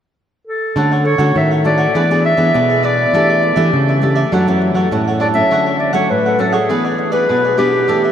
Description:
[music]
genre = samba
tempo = 101 BPM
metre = 4/4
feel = straight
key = D major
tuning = A4 = 440 Hz
[part]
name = warm clarinet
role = melody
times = 0.5-8.1 s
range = G4 to E5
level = -16 LUFS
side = equal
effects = tape echo
[part]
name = cavaquinho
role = accompaniment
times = 0.8-8.1 s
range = D4 to F#5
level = -21 LUFS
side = right 4 dB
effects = none
[part]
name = nylon-string guitar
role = accompaniment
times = 0.8-8.1 s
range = F#2 to G#4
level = -19 LUFS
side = left 2 dB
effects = none
[part]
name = nylon-string guitar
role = bass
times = 0.8-5.4 s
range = A2 to F#3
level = -16 LUFS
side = equal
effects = none
[sound]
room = wet huge ambient reverb, RT60 8.0 s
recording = in a vast, echoing space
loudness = -12 LUFS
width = side -9 dB against mid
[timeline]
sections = 0.8-5.5 A section; 5.5-8.1 B section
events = none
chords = 0.0 N.C.; 0.8 Dmaj7; 1.9 E7; 3.1 A7sus4/E; 4.3 Dmaj9/F#; 5.5 Dmaj7; 6.7 E7

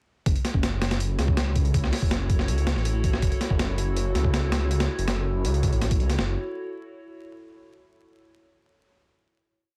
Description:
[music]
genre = drum and bass, jungle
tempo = 162 BPM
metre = 4/4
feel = straight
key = F# minor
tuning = A4 = 440 Hz
[part]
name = warbly tape-like pad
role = sustained chords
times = 1.0-6.4 s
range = E4 to C#5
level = -36 LUFS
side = equal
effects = chorus, built-in reverb, phaser
[part]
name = detuned saw bass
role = bass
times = 0.3-6.4 s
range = F#1 to C#2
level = -28 LUFS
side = equal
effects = none
[part]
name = breakbeat sampler-style drum kit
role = drums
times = 0.3-6.3 s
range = hi-hat, kick drum, snare drum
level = -27 LUFS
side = equal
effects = none
[sound]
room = light reverb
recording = dense, heavily limited modern master, vinyl crackle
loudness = -25 LUFS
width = mono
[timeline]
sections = 0.3-6.2 drop; 6.2-7.7 final chord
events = drop 0.3-6.2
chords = 0.3 F#m7

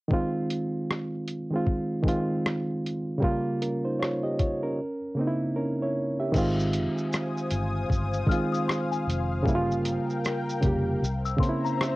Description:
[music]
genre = lo-fi hip hop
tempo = 77 BPM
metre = 4/4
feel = swing 62% on 16ths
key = Ab major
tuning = A4 = 440 Hz
[part]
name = barky reed electric piano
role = accompaniment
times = 0.1-12.0 s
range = Db3 to E5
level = -26 LUFS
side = right 1 dB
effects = overdrive, cassette tape
[part]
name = lo-fi sampler-style drum kit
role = drums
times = 0.1-12.0 s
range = crash cymbal, hi-hat, kick drum, rim click, shaker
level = -28 LUFS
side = left 1 dB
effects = cassette tape
[part]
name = lush unison pad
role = sustained chords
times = 7.0-12.0 s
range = Bb4 to Eb6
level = -34 LUFS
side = left 3 dB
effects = chorus, cassette tape
[part]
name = vintage muted fingered electric bass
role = bass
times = 6.3-11.3 s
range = F1 to C2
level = -30 LUFS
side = left 1 dB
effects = none
[part]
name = small celesta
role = second line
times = 8.3-12.0 s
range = Ab5 to F6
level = -34 LUFS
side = left 8 dB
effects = cassette tape, tape echo
[sound]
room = light reverb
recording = home recording on cassette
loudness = -25 LUFS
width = side -19 dB against mid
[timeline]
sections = 0.1-6.3 A section; 6.3-12.0 B section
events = silent gap 4.8-6.3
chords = 0.1 Ab6; 3.2 Gm7b5; 4.8 C7b9; 6.3 Ab6; 9.5 Gm7b5; 11.0 C7b9

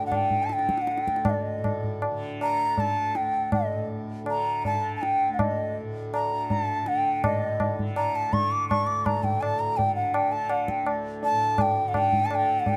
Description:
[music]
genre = indian classical, Hindustani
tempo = 163 BPM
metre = 4/4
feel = straight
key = unclear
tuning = A4 = 436 Hz
[part]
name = bright bansuri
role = melody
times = 0.0-12.8 s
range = D5 to D6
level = -27 LUFS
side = equal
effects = none
[part]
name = tanpura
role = drone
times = 0.0-12.8 s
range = D2 to D3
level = -36 LUFS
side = equal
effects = none
[part]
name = tabla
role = percussion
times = 0.1-12.8 s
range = none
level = -31 LUFS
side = equal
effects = none
[sound]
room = moderate spring reverb, RT60 1.6 s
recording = dark, warm production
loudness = -26 LUFS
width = mono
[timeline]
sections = 0.0-7.2 A section; 7.2-12.8 B section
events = speeding up 0.0-12.8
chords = none

